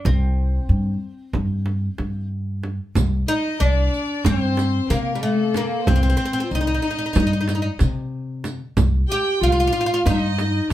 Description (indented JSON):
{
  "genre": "Turkish makam ensemble",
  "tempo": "186 BPM (eighths)",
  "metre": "9/8",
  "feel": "straight",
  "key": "C makam huseyni",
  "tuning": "A4 = 441 Hz",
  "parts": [
    { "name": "oud", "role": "melody", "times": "0.0-10.7 s", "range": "G3 to G4", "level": "-24 LUFS", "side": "equal", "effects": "none" },
    { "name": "upright bass", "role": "bass", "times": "0.1-10.7 s", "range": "C2 to C3", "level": "-21 LUFS", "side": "equal", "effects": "none" },
    { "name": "frame drum", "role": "percussion", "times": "0.1-10.7 s", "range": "none", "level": "-25 LUFS", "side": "right 3 dB", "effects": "none" },
    { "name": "riq", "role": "percussion", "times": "3.0-10.5 s", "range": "none", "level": "-32 LUFS", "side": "right 4 dB", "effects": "none" },
    { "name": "mellow clarinet", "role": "second line", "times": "3.3-10.7 s", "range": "Bb3 to G4", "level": "-26 LUFS", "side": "left 1 dB", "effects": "none" },
    { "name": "rich chamber violin section", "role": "second line", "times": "3.3-10.7 s", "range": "A4-30c to G5", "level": "-28 LUFS", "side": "left 3 dB", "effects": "none" }
  ],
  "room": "moderate studio ambience, RT60 0.5 s",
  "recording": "band playing live in one room",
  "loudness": "-19 LUFS",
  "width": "side -13 dB against mid",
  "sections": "0.0-3.0 A section; 3.0-10.7 B section",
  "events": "none",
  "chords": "none"
}